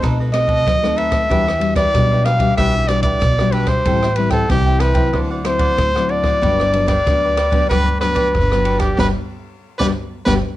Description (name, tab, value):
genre	samba and choro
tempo	94 BPM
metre	4/4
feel	straight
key	G major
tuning	A4 = 436 Hz
part	clear trumpet	melody	0.0-10.3 s	G4 to F5	-18 LUFS	equal	cassette tape, plate reverb
part	cavaquinho	accompaniment	0.0-10.4 s	D4 to G5	-27 LUFS	right 4 dB	plate reverb
part	nylon-string guitar	accompaniment	0.0-10.4 s	G2 to F#4	-22 LUFS	left 4 dB	plate reverb
part	upright bass	bass	0.0-10.4 s	G1 to E2	-20 LUFS	equal	none
part	open jazz drum kit	drums	0.0-10.4 s	kick drum, ride cymbal, rim click, snare drum	-21 LUFS	equal	none
room	light reverb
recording	home recording on cassette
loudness	-14 LUFS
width	side -15 dB against mid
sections	0.0-10.6 A section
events	band accent 9.0-10.6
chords	0.0 B7b9; 1.3 Em9; 3.9 Am7; 5.1 D9; 6.4 Gmaj7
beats	0.02 0.66 | 1.30 1.94 2.58 3.23 | 3.87 4.51 5.15 5.79 | 6.43 7.07 7.71 8.35 | 8.99 9.63 10.27